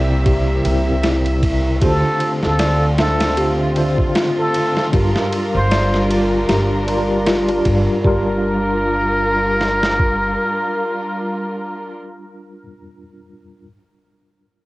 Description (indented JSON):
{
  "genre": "trip hop",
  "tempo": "77 BPM",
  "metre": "4/4",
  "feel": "swing 56% on 16ths",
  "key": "G dorian",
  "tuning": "A4 = 440 Hz",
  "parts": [
    { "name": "tine electric piano", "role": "accompaniment", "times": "0.0-13.7 s", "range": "C3 to E5", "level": "-23 LUFS", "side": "equal", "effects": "fast stereo tremolo, cassette tape" },
    { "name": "warm studio string section", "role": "sustained chords", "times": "0.0-11.9 s", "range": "C3 to E5", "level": "-22 LUFS", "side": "equal", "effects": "cassette tape" },
    { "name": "celesta", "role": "arpeggios", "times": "0.0-13.7 s", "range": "E4 to D5", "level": "-24 LUFS", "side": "left 1 dB", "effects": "cassette tape, tape echo" },
    { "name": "upright bass", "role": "bass", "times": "0.0-10.3 s", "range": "G1 to D2", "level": "-21 LUFS", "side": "equal", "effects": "tube saturation" },
    { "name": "dusty soul sampler-style drum kit", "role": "drums", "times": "0.3-10.2 s", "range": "kick drum, ride cymbal, snare drum", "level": "-22 LUFS", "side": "equal", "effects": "cassette tape" },
    { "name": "trumpet with plunger mute", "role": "melody", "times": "1.8-11.9 s", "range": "A4 to C5", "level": "-21 LUFS", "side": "equal", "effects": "cassette tape, tape echo" }
  ],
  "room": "light reverb, small room ambience",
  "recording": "home recording on cassette",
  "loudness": "-15 LUFS",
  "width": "side -19 dB against mid",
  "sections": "0.0-8.0 A section; 8.0-11.2 B section",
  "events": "filter sweep on tine electric piano 0.0-8.0",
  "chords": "0.0 C7; 1.8 Dm7; 4.9 Gm7",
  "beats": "0.26 1.03 | 1.81 2.59 3.37 4.15 | 4.93 5.71 6.49 7.27 | 8.05 8.83 9.61 10.39"
}